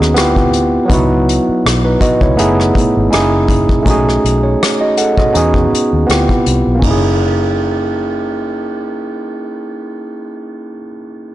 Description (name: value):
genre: R&B, neo-soul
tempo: 81 BPM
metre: 4/4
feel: swing 55% on 16ths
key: unclear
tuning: A4 = 438 Hz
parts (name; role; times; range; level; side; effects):
- barky tine electric piano; accompaniment; 0.0-11.3 s; F#3 to F#5; -14 LUFS; right 1 dB; none
- vintage muted fingered electric bass; bass; 0.0-10.8 s; F#1 to E2; -16 LUFS; left 1 dB; transformer saturation
- unplugged drum kit; drums; 0.0-7.0 s; hi-hat, kick drum, ride cymbal, rim click; -17 LUFS; equal; soft clipping on snare
room: light reverb, small room ambience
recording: blown-out, overdriven recording, overdrive, nothing above 10.8 kHz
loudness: -11 LUFS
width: side -14 dB against mid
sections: 0.0-6.8 A section; 6.8-9.8 B section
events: none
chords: 0.2 Dm11; 0.9 C#m11; 2.4 F#m11; 3.1 F#7; 3.9 B7; 5.3 E69; 6.1 Dm11; 6.8 F#7